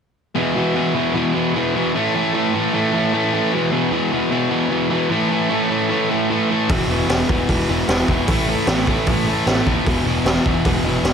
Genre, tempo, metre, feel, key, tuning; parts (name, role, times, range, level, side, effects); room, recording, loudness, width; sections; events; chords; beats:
punk rock; 152 BPM; 4/4; straight; A4 = 440 Hz
distorted electric guitar; riff; 0.3-11.1 s; E2 to A3; -20 LUFS; left 10 dB; distortion
distorted electric guitar; riff; 0.4-11.1 s; E2 to A3; -20 LUFS; right 10 dB; distortion
growling picked electric bass; bass; 6.7-11.1 s; E1 to D#2; -24 LUFS; equal; overdrive
raw garage drum kit; drums; 6.7-11.1 s; hi-hat, kick drum, snare drum; -20 LUFS; equal
light reverb; -16 LUFS; side -7 dB against mid
0.4-11.1 A section
0.4 E5; 1.9 A5; 3.5 E5; 5.1 A5; 6.7 E5; 8.3 A5; 9.9 E5
| 0.36 0.75 1.15 1.54 | 1.94 2.34 2.73 3.13 | 3.52 3.92 4.32 4.71 | 5.11 5.51 5.90 6.30 | 6.70 7.09 7.49 7.88 | 8.28 8.68 9.07 9.47 | 9.87 10.26 10.66 11.05